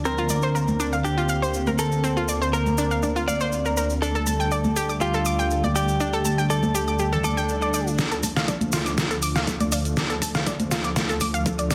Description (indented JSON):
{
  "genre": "progressive house",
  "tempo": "121 BPM",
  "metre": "4/4",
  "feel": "straight",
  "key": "D minor",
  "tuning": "A4 = 439 Hz",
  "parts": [
    { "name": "direct-recorded clean electric guitar", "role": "melody", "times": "0.1-7.9 s", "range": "F4 to D5", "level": "-30 LUFS", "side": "equal", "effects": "vintage 12-bit sampler grit, digital delay" },
    { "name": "warm analog pad", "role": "sustained chords", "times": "0.1-11.7 s", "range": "D2 to C4", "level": "-28 LUFS", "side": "equal", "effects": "lush chorus, sidechain pumping" },
    { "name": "analog pluck", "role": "arpeggios", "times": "0.1-11.7 s", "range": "C4 to D6", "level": "-30 LUFS", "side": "equal", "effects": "chorus, sidechain pumping, digital delay" },
    { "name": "cabasa", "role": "percussion", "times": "0.1-11.7 s", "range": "none", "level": "-36 LUFS", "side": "equal", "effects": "none" },
    { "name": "congas", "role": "percussion", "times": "0.3-11.3 s", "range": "none", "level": "-32 LUFS", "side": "equal", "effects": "sidechain pumping on perc" },
    { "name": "swell", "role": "sound effects", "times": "7.2-8.0 s", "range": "none", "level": "-37 LUFS", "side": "equal", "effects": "none" },
    { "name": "electronic kick drum", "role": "drums", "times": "8.0-11.6 s", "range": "none", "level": "-31 LUFS", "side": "equal", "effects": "overdrive, high-pass filter on kick, high-pass filter on room" },
    { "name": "pop drum kit", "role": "drums", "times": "8.0-11.7 s", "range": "hi-hat, snare drum", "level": "-28 LUFS", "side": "equal", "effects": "overdrive" }
  ],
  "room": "moderate lush hall reverb, RT60 2.1 s",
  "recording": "dense, heavily limited modern master",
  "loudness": "-23 LUFS",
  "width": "mono",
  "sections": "0.0-8.0 A section; 8.0-11.7 B section",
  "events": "filter sweep on analog synth pad 0.0-8.0; swell 7.2-8.0; build-up 8.0-11.7; drum fill 8.0-11.7",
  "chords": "0.1 Bbadd9/D; 4.0 Gsus2/D; 8.0 Dm"
}